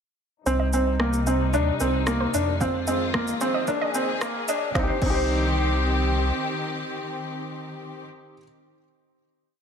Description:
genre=piano and strings electronica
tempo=112 BPM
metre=4/4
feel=straight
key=C minor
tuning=A4 = 440 Hz
part: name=rich symphonic string section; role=sustained chords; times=0.5-8.1 s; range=C3 to Ab4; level=-30 LUFS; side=left 2 dB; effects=sidechain pumping, low-pass filter
part: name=wide unison pluck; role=arpeggios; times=0.5-5.2 s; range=Bb4 to G5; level=-33 LUFS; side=right 3 dB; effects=sidechain pumping, ping-pong delay
part: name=felt-muted upright piano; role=riff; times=0.5-8.4 s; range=Bb3 to C5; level=-25 LUFS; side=equal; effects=ping-pong delay
part: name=warm sub bass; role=bass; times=0.5-6.3 s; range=Bb1 to F2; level=-26 LUFS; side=equal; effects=sidechain pumping
part: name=organic electronic drum kit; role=drums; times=0.5-5.2 s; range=crash cymbal, rim click, shaker, snare drum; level=-32 LUFS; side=right 1 dB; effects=studio reverb
part: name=electronic kick drum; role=drums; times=2.6-5.2 s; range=none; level=-28 LUFS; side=equal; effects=studio reverb
room=moderate echo chamber reverb, RT60 2.0 s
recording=high-pass filter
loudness=-22 LUFS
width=side -7 dB against mid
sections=0.5-4.8 build; 4.8-9.0 final chord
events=build-up 0.5-4.8; filter sweep on string section 0.5-4.8; filter sweep on synth arpeggio sound 0.5-4.8; filter sweep 0.5-4.8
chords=0.5 Cm; 1.5 Eb6; 2.6 Fm7; 3.7 Bb7sus4; 4.8 Cm

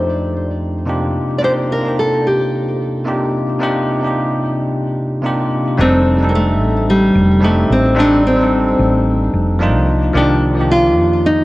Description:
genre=sunset chillout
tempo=110 BPM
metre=4/4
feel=swing 54% on 16ths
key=unclear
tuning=A4 = 438 Hz
part: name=nylon-string guitar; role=melody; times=0.0-11.4 s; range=G3 to D5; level=-16 LUFS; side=equal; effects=ping-pong delay
part: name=bell-like tine electric piano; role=accompaniment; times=0.0-11.4 s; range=F2 to D5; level=-17 LUFS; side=equal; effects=auto-pan, ping-pong delay
part: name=woody fretless electric bass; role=bass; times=5.8-11.4 s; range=F1 to F2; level=-16 LUFS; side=equal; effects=transformer saturation
room=moderate plate reverb, RT60 3.5 s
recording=worn, warbling old tape, cassette tape, warbly pitch drift, lossy compression artefacts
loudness=-13 LUFS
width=side -18 dB against mid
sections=0.0-5.8 A section; 5.8-11.4 B section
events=filter sweep on tine electric piano 0.0-5.8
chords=0.0 F13; 1.2 Cm11; 5.8 F13; 9.9 Cm11

